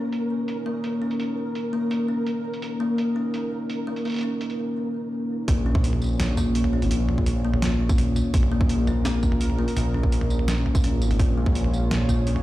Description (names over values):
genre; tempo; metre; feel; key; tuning
half-time drum and bass; 168 BPM; 4/4; half-time; Bb minor; A4 = 442 Hz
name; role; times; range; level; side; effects
dark analog pad; sustained chords; 0.0-12.4 s; Bb3 to Db5; -30 LUFS; equal; chorus, sidechain pumping
kalimba; arpeggios; 0.0-12.4 s; Ab3 to Db4; -27 LUFS; left 2 dB; digital delay
flickering grainy texture; texture; 0.0-4.8 s; Bb4; -38 LUFS; right 4 dB; built-in reverb
boom bap sampler-style drum kit; drums; 0.1-12.4 s; hi-hat, snare drum, tambourine, toms; -30 LUFS; right 1 dB; overdrive, low-pass filter on hats, studio reverb, low-pass filter on toms, low-pass filter on perc, low-pass filter on snare
dark detuned saw bass; bass; 5.5-12.4 s; Ab1 to Bb1; -24 LUFS; equal; tube saturation
electronic kick drum; drums; 5.5-12.2 s; none; -22 LUFS; equal; studio reverb
room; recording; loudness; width
light reverb, digital ambience; played on a big sound system in a bare room, large studio reverb; -21 LUFS; side -15 dB against mid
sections
0.0-5.5 A section; 5.5-12.4 B section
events
drop 5.5-12.4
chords
0.0 Bbm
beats
0.12 0.48 0.84 | 1.20 1.55 1.91 2.27 | 2.62 2.98 3.34 3.69 | 4.05 4.41 4.77 5.12 | 5.48 5.84 6.20 6.55 | 6.91 7.27 7.62 7.98 | 8.34 8.70 9.05 9.41 | 9.77 10.12 10.48 10.84 | 11.20 11.55 11.91 12.27